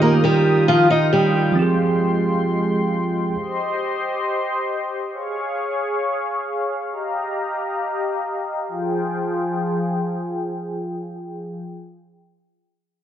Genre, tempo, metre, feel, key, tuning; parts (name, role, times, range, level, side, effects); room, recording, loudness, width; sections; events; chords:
hip hop; free time; F minor; A4 = 440 Hz
picked steel-string acoustic guitar; melody; 0.0-1.5 s; F3 to Eb5; -18 LUFS; left 1 dB; low-pass filter, dub echo
bell-like tine electric piano; accompaniment; 0.0-3.4 s; Eb3 to Ab4; -19 LUFS; right 2 dB; low-pass filter, dub echo
warm analog pad; sustained chords; 0.0-11.6 s; F3 to Eb6; -23 LUFS; left 1 dB; chorus, tremolo, low-pass filter
moderate echo chamber reverb, RT60 1.6 s; echo-heavy mix; -19 LUFS; side -10 dB against mid
0.0-8.7 A section; 8.7-12.2 B section
filter sweep 0.0-8.7
0.0 Ebadd9; 1.6 Fmadd9; 3.3 Cm; 5.1 Db; 6.9 Ebadd9; 8.7 Fmadd9